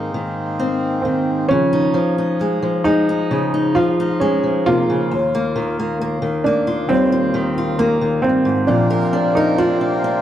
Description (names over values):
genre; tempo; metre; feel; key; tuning
acoustic folk-pop ballad; 67 BPM; 4/4; straight; unclear; A4 = 438 Hz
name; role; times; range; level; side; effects
fingerpicked steel-string acoustic guitar; accompaniment; 0.0-10.2 s; Eb2 to Bb4; -19 LUFS; left 1 dB; none
hand-pumped harmonium; sustained chords; 0.0-1.5, 8.7-10.2 s; C3 to C4; -24 LUFS; right 1 dB; none
dark upright piano; melody; 1.0-10.2 s; F3 to F4; -18 LUFS; right 1 dB; none
room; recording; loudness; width
light reverb; close, detailed microphones; -15 LUFS; side -11 dB against mid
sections
0.0-1.5 A section; 1.5-10.2 B section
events
none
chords
0.0 Abadd9; 1.5 Dbadd9; 5.1 Ebadd9; 8.7 Bbadd9